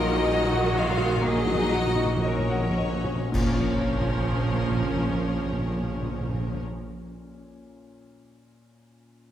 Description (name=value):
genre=classical, romantic movement for piano and orchestra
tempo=53-71 BPM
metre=4/4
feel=rubato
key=Bb minor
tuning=A4 = 440 Hz
part: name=clear grand piano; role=melody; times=0.0-9.3 s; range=Bb2 to Gb5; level=-29 LUFS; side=left 1 dB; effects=none
part: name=rich studio violin section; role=melody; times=0.0-6.6 s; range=Bb4 to F5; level=-34 LUFS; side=left 4 dB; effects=none
part: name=clear studio violin section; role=second line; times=0.0-6.6 s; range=Db4 to F4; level=-34 LUFS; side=left 3 dB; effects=none
part: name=rich studio viola section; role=accompaniment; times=0.0-6.6 s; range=Eb3 to Db4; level=-31 LUFS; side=right 2 dB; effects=none
part: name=mellow tuba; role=bass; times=0.0-6.6 s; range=Bb1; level=-35 LUFS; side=right 3 dB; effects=none
part: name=rich studio cello section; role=bass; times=0.0-6.6 s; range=Bb2 to Bb4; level=-34 LUFS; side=right 1 dB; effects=none
part: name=rich studio double bass section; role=bass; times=0.0-6.6 s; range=Bb1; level=-32 LUFS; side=right 3 dB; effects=none
part: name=timpani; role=percussion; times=0.0-6.6 s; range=Bb2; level=-30 LUFS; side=equal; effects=none
part: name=clash cymbals and concert bass drum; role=percussion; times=3.3-5.4 s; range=none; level=-32 LUFS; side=equal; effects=none
room=moderate scoring stage reverb, RT60 1.5 s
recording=none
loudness=-23 LUFS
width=side -11 dB against mid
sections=0.0-3.3 A section; 3.3-7.5 B section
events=timpani fill 0.0-3.3; slowing down 0.0-3.3; band accent 3.3-4.4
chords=0.0 Ebm/Bb; 3.3 Bbm